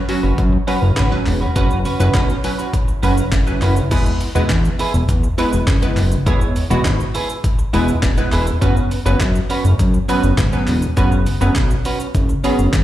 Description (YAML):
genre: dance-pop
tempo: 102 BPM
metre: 4/4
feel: straight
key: E major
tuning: A4 = 441 Hz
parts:
  - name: wavetable chord stab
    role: accompaniment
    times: 0.1-12.8 s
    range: F#3 to C#5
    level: -22 LUFS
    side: equal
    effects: phaser, sidechain pumping, slapback echo
  - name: clean electric guitar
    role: riff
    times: 0.1-12.8 s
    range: C#4 to B4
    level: -24 LUFS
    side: right 3 dB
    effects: analog chorus, slapback echo
  - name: breakbeat sampler-style drum kit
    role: drums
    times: 0.1-12.8 s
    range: crash cymbal, handclaps, hi-hat, kick drum, shaker, snare drum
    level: -20 LUFS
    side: equal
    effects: none
  - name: fat analog bass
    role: bass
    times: 0.2-12.8 s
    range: E1 to F#2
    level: -16 LUFS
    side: equal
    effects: sidechain pumping
  - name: swell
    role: sound effects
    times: 2.6-3.9 s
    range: none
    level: -33 LUFS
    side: left 1 dB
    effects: slapback echo
room: little or no reverb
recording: live gig heard through the venue's PA, club reverb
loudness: -14 LUFS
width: side -13 dB against mid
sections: 0.0-3.9 A section; 3.9-12.8 B section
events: swell 2.6-3.9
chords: 0.0 N.C.; 3.9 E